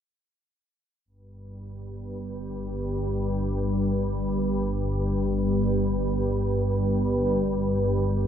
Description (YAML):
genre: ambient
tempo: free time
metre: none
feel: none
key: unclear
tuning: A4 = 440 Hz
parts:
  - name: organ-like drone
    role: drone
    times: 1.5-8.3 s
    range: G1 to G2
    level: -24 LUFS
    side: equal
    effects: ensemble chorus, built-in reverb
room: wet huge ambient reverb, RT60 7.4 s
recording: in a vast, echoing space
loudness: -24 LUFS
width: side -9 dB against mid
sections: 1.1-8.3 A section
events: filter sweep on synth drone 1.1-8.3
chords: none